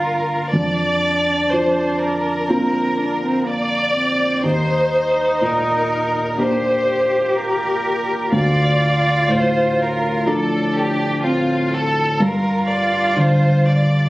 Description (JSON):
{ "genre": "neoclassical piano and strings", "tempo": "62 BPM", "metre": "4/4", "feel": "rubato", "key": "G minor", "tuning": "A4 = 440 Hz", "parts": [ { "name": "muted chamber violin section", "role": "melody", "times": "0.0-14.1 s", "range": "F4 to D5", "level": "-20 LUFS", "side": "equal", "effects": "none" }, { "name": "muted cello", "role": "second line", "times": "0.0-14.1 s", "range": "Bb3 to G4", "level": "-21 LUFS", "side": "right 1 dB", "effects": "none" }, { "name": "felt-muted upright piano", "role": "accompaniment", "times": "0.0-14.1 s", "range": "D2 to A4", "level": "-20 LUFS", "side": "equal", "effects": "none" } ], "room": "moderate large studio reverb, RT60 1.1 s", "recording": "recorded on a phone in the room, club reverb", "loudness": "-16 LUFS", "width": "side -18 dB against mid", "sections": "0.0-14.1 A section", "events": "none", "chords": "0.0 Gm7; 0.5 Bb/F; 4.4 Ebmaj7; 8.3 Dm; 12.2 Gm7" }